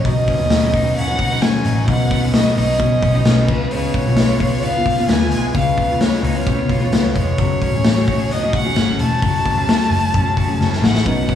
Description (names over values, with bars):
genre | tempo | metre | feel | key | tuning
jangly indie pop | 131 BPM | 4/4 | straight | unclear | A4 = 440 Hz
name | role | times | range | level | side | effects
warm violin | melody | 0.0-11.3 s | B4 to A5 | -21 LUFS | equal | tape echo
picked steel-string acoustic guitar | accompaniment | 0.0-11.3 s | B2 to B4 | -24 LUFS | right 4 dB | none
electric guitar at the edge of break-up | arpeggios | 0.0-11.3 s | B2 to G#4 | -24 LUFS | left 8 dB | tape echo
raw garage drum kit | drums | 0.0-11.3 s | crash cymbal, hi-hat, kick drum, snare drum | -18 LUFS | left 1 dB | none
vintage muted picked electric bass | bass | 0.1-11.3 s | E1 to C#3 | -20 LUFS | left 1 dB | none
warbly lo-fi synth keys | accompaniment | 11.1-11.3 s | C#4 to B4 | -25 LUFS | right 2 dB | chorus
room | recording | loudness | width
light reverb, studio ambience | echo-heavy mix, small room reverb | -14 LUFS | side -10 dB against mid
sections
0.0-11.3 A section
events
drum fill 10.6-11.1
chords
0.0 Badd9; 3.5 C#7; 7.4 F#madd9